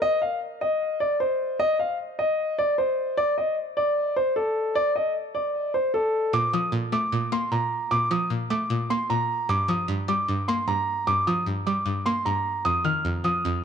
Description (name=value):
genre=hip hop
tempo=152 BPM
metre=4/4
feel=half-time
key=Bb major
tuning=A4 = 440 Hz
part: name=dark grand piano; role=melody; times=0.0-13.6 s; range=A4 to F6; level=-24 LUFS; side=equal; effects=digital delay
part: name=string-like resonator pluck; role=accompaniment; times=6.3-13.6 s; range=F2 to Bb3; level=-26 LUFS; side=equal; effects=chorus
room=moderate scoring stage reverb, RT60 2.0 s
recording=dark, warm production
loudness=-22 LUFS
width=side -7 dB against mid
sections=0.0-6.3 A section; 6.3-13.6 B section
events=none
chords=0.0 N.C.; 6.3 Bbmaj7; 9.5 Gm7; 12.7 F7(no3)